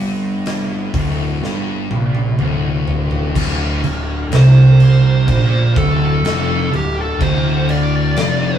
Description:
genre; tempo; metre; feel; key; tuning
stoner and doom metal; 62 BPM; 4/4; straight; D minor; A4 = 441 Hz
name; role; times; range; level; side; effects
tonewheel organ; sustained chords; 0.0-8.6 s; D3 to D4; -30 LUFS; left 3 dB; none
thick fuzz guitar; riff; 0.0-8.6 s; D2 to C3; -21 LUFS; left 6 dB; distortion
thick fuzz guitar; riff; 0.0-8.6 s; D2 to C3; -16 LUFS; right 4 dB; distortion
fuzz picked electric bass; bass; 0.0-8.6 s; D1 to C2; -20 LUFS; left 1 dB; overdrive
big rock drum kit; drums; 0.5-8.4 s; crash cymbal, hi-hat, kick drum, snare drum, toms; -23 LUFS; left 1 dB; none
fuzz lead guitar; melody; 4.4-8.6 s; G4 to D5; -21 LUFS; equal; wah, distortion
room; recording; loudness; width
light reverb; band playing live in one room, small room ambience; -13 LUFS; side -10 dB against mid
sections
0.0-3.4 A section; 3.4-8.6 B section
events
drum fill 1.4-3.4; lead electric guitar solo 3.4-8.6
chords
0.0 D5; 3.4 Dm

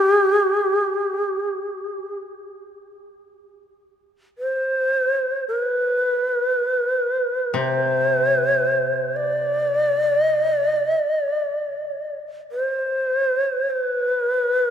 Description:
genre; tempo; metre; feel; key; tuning
japanese traditional, Japanese chamber music; free time; none; none; unclear; A4 = 440 Hz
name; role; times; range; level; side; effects
breathy bright long shakuhachi; melody; 0.0-14.7 s; G4 to D5; -19 LUFS; equal; none
koto; accompaniment; 7.5-10.9 s; C3; -28 LUFS; left 3 dB; none
room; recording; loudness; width
wet cathedral reverb, RT60 4.3 s; none; -19 LUFS; side -8 dB against mid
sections
0.0-2.9 A section; 2.9-14.7 A section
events
none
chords
none

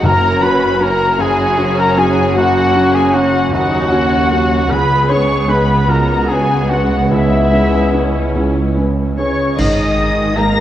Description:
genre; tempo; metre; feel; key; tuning
cinematic, emotional film score for orchestra; 48-52 BPM (dotted quarters); 6/8; rubato; unclear; A4 = 439 Hz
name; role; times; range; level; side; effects
muted symphonic violin section; melody; 0.0-10.6 s; E5 to A#6; -20 LUFS; left 2 dB; none
flute section; second line; 0.0-10.6 s; C#5 to C#6; -21 LUFS; left 2 dB; none
muted studio violin section; second line; 0.0-10.6 s; E4 to A#5; -24 LUFS; left 3 dB; none
warm oboe; second line; 0.0-8.3 s; E4 to C#5; -21 LUFS; right 1 dB; none
felt-muted upright piano; accompaniment; 0.0-10.6 s; F#1 to B4; -19 LUFS; equal; none
muted symphonic viola section; accompaniment; 0.0-10.6 s; G#3 to G#4; -22 LUFS; equal; none
muted symphonic cello section; bass; 0.0-10.6 s; C#2 to A#3; -21 LUFS; right 2 dB; none
muted symphonic double bass section; bass; 0.0-10.6 s; F#1 to D#2; -20 LUFS; right 3 dB; none
timpani; percussion; 0.0-1.2 s; F#2; -20 LUFS; equal; none
mellow French horn section; sustained chords; 0.1-10.6 s; F#3 to A#4; -20 LUFS; left 1 dB; none
mellow clarinet; second line; 9.2-10.6 s; C#5 to A#5; -21 LUFS; left 1 dB; none
clash cymbals and concert bass drum; percussion; 9.6-10.6 s; none; -20 LUFS; equal; none
room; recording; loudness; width
moderate recital hall reverb, RT60 1.6 s; worn, warbling old tape, cassette tape, warbly pitch drift; -11 LUFS; side -12 dB against mid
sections
0.0-9.6 A section; 9.6-10.6 B section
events
band accent 9.6-10.4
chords
0.1 F#; 4.7 C#m7; 9.6 G#sus2

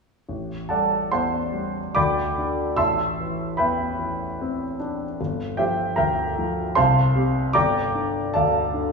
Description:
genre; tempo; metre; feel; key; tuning
classical, impressionist solo piano; 75 BPM; 3/4; uneven beats, rubato; A minor; A4 = 441 Hz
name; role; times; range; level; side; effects
clear concert grand piano; solo; 0.3-8.9 s; G1 to E6; -21 LUFS; equal; none
room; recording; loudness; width
wet recital hall reverb, RT60 1.6 s; recorded in a church or concert hall, small room ambience; -20 LUFS; side -4 dB against mid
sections
0.3-8.9 A section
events
none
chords
0.3 Am7; 2.0 D5; 2.8 Am11; 5.2 Gm7; 6.8 C5; 7.5 Gm9

